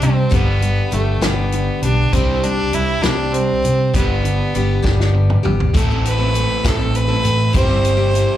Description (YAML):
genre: folk rock and heartland rock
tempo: 66 BPM (dotted quarters)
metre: 6/8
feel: straight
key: C major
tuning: A4 = 440 Hz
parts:
  - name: bright fiddle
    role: melody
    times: 0.0-8.4 s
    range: A3 to C5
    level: -20 LUFS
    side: right 1 dB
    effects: plate reverb, slapback echo
  - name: picked steel-string acoustic guitar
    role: accompaniment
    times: 0.0-8.4 s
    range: G2 to A4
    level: -23 LUFS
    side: left 4 dB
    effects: plate reverb, slapback echo
  - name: crunchy overdriven guitar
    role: riff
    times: 0.0-8.4 s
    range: G2 to A4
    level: -23 LUFS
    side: right 2 dB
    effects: slapback echo
  - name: fingered electric bass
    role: bass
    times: 0.0-8.2 s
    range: G1 to C3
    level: -18 LUFS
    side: equal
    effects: none
  - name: natural country drum kit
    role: drums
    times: 0.0-8.3 s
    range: hi-hat, kick drum, snare drum, toms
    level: -20 LUFS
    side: equal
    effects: none
room: little or no reverb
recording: live gig heard through the venue's PA, club reverb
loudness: -14 LUFS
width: side -12 dB against mid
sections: 0.0-5.7 A section; 5.7-8.4 B section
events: drum fill 4.8-5.7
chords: 0.3 G; 2.1 Csus2; 3.9 G; 5.7 Am; 7.5 C/G